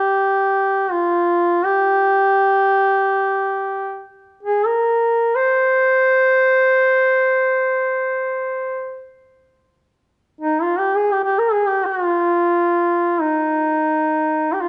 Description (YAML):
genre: caucasian folk, Caucasian lament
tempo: free time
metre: none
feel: none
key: C minor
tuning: A4 = 437 Hz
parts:
  - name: mellow duduk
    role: solo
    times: 0.0-14.7 s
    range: Eb4 to C5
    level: -18 LUFS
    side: equal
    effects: none
room: moderate recital hall reverb, RT60 1.6 s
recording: dark, warm production, nothing above 11.0 kHz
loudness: -18 LUFS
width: mono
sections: 0.0-14.7 A section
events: none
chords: none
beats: free time